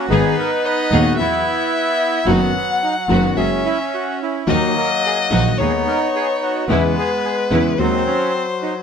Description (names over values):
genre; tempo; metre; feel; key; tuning
tango; 110 BPM; 4/4; rubato; unclear; A4 = 438 Hz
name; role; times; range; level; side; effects
bandoneon; melody; 0.0-8.8 s; F#3 to B4; -20 LUFS; right 1 dB; none
warm violin; second line; 0.0-8.8 s; B4 to F#5; -21 LUFS; left 3 dB; none
clear concert grand piano; accompaniment; 0.1-8.0 s; D#1 to G#4; -20 LUFS; left 4 dB; none
rich studio string section; stabs; 0.1-8.0 s; F#3 to G#4; -26 LUFS; right 2 dB; none
clear double bass; bass; 0.1-8.0 s; F#1 to E2; -20 LUFS; right 2 dB; none
room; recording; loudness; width
light reverb; close, detailed microphones; -15 LUFS; side -7 dB against mid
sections
0.0-8.8 A section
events
none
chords
0.1 G#m; 1.2 Esus2; 2.3 B/F#; 3.4 F#add9; 4.5 D#m; 5.6 G#m/D#; 6.7 C#m7/E; 7.8 G#7/D#